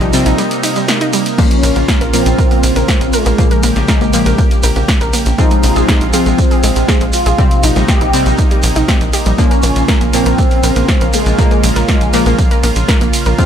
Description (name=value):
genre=melodic techno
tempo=120 BPM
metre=4/4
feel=straight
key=Bb dorian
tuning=A4 = 440 Hz
part: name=expressive synth lead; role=melody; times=0.0-13.5 s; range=F3 to G4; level=-18 LUFS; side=equal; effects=ensemble chorus, sidechain pumping, dub echo
part: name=lush unison pad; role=sustained chords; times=0.0-13.5 s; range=C3 to G4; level=-20 LUFS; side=right 1 dB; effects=chorus, vintage 12-bit sampler grit, sidechain pumping
part: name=warbly dusty pluck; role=arpeggios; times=0.0-13.4 s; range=G3 to Bb5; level=-20 LUFS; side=right 1 dB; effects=chorus, sidechain pumping, tape echo
part: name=synth brass stab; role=stabs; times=0.0-13.5 s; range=Bb2 to F4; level=-20 LUFS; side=left 2 dB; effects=chorus, sidechain pumping, tape echo
part: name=tight sequencer bass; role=bass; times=0.0-13.3 s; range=Bb1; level=-15 LUFS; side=equal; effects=sidechain pumping
part: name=punchy analog drum machine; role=drums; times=0.0-13.5 s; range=crash cymbal, hi-hat, ride cymbal, snare drum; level=-20 LUFS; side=equal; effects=sidechain pumping on hats, sidechain pumping on cymbals
part: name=shekere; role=percussion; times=0.0-13.5 s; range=none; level=-24 LUFS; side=right 4 dB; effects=none
part: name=electronic kick drum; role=drums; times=1.4-13.5 s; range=none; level=-14 LUFS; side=equal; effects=none
room=little or no reverb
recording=none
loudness=-10 LUFS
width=side -9 dB against mid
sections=0.0-13.5 A section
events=break 0.4-1.4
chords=0.0 Cm7/Bb; 1.4 Bbm; 5.4 Fm/Bb; 7.4 Cm7/Bb; 9.4 Bbm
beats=0.38 0.88 | 1.38 1.88 2.38 2.88 | 3.38 3.88 4.38 4.88 | 5.38 5.88 6.38 6.88 | 7.38 7.88 8.38 8.88 | 9.38 9.88 10.38 10.88 | 11.38 11.88 12.38 12.88 | 13.38